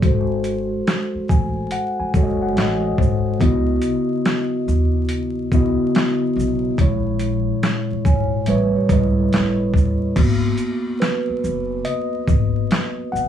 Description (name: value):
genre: lo-fi hip hop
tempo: 71 BPM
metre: 4/4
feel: swing 66% on 16ths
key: G# minor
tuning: A4 = 441 Hz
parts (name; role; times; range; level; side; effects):
- mellow tine electric piano; accompaniment; 0.0-13.3 s; A2 to G#5; -20 LUFS; left 1 dB; medium stereo tremolo, low-pass filter
- upright bass; bass; 0.0-13.3 s; F#1 to D#2; -23 LUFS; left 1 dB; none
- boom bap sampler-style drum kit; drums; 0.0-13.3 s; crash cymbal, hi-hat, kick drum, shaker, snare drum; -20 LUFS; right 1 dB; none
- vibraphone with soft mallets; second line; 8.1-10.1 s; E4 to G#5; -26 LUFS; right 6 dB; low-pass filter, tape echo
room: moderate studio reverb, RT60 0.5 s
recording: vinyl crackle, small room ambience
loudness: -17 LUFS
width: side -9 dB against mid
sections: 0.0-10.2 A section; 10.2-13.3 B section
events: tine electric piano fill 0.9-3.4; tine electric piano solo 10.2-13.3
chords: 0.0 G#7b9; 3.4 C#m11; 6.8 A#m7b5; 8.5 A9; 10.2 G#m7